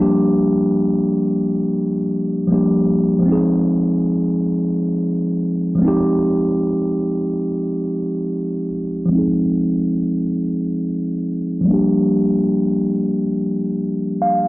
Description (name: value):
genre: hip hop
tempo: free time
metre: none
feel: none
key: F dorian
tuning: A4 = 441 Hz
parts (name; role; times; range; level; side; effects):
- mellow tine electric piano; solo; 0.0-14.5 s; F3 to F5; -16 LUFS; equal; low-pass filter
room: moderate spring reverb, RT60 1.2 s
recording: dark, warm production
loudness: -16 LUFS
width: side -20 dB against mid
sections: 0.0-9.1 A section; 9.1-14.5 B section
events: filter sweep on tine electric piano 9.1-14.5; tine electric piano fill 13.9-14.5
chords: 0.0 Gm7; 3.2 Fm7; 5.8 Fm9; 9.1 Fm7; 11.7 Gm7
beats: free time